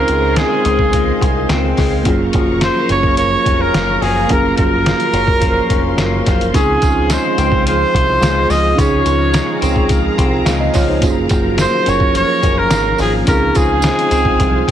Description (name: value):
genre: indie pop, bedroom pop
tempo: 107 BPM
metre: 4/4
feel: straight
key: Db major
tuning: A4 = 440 Hz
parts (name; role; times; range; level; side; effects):
- clear trumpet; melody; 0.0-14.7 s; Ab4 to Eb5; -16 LUFS; equal; lush chorus, slapback echo
- electric guitar through a small old amp; accompaniment; 0.0-14.7 s; Gb2 to Ab4; -20 LUFS; left 2 dB; wide subtle chorus, vibrato effect
- mellow tine electric piano; accompaniment; 0.0-14.7 s; Bb3 to F5; -21 LUFS; right 4 dB; medium stereo tremolo, cassette tape
- string machine, cellos; sustained chords; 0.0-14.7 s; Ab4 to Db6; -23 LUFS; equal; ensemble chorus
- deep dub picked electric bass; bass; 0.0-14.7 s; F1 to Db2; -19 LUFS; equal; none
- trip hop sampler-style drum kit; drums; 0.1-14.7 s; hi-hat, kick drum, snare drum; -18 LUFS; equal; none
- tambourine; percussion; 6.6-14.2 s; none; -31 LUFS; right 6 dB; none
room: light reverb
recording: heavily compressed radio sound, multiband compression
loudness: -12 LUFS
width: side -10 dB against mid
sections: 0.0-14.7 A section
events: none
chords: 0.0 Dbmaj7; 2.1 Gbmaj7; 6.5 Dbmaj7; 11.0 Gbmaj7; 13.3 Dbmaj7